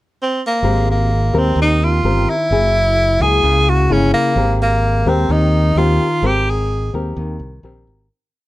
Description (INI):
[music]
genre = bossa nova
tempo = 128 BPM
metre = 4/4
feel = straight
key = Ab major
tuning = A4 = 440 Hz
[part]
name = clear tenor saxophone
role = melody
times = 0.2-7.0 s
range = Bb3 to Ab4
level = -17 LUFS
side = equal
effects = none
[part]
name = nylon-string guitar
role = accompaniment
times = 0.6-8.1 s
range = Db3 to Bb4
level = -20 LUFS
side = left 3 dB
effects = none
[part]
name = modern bright fingered electric bass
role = bass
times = 0.6-8.1 s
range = Gb1 to Eb2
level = -17 LUFS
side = right 1 dB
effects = none
[sound]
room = light reverb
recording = close, detailed microphones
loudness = -13 LUFS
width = side -17 dB against mid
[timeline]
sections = 0.0-0.6 pickup bar; 0.6-8.1 A section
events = fade-out 6.2-8.1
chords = 0.0 N.C.; 0.6 Abmaj9; 2.5 Gb9; 4.4 Abmaj9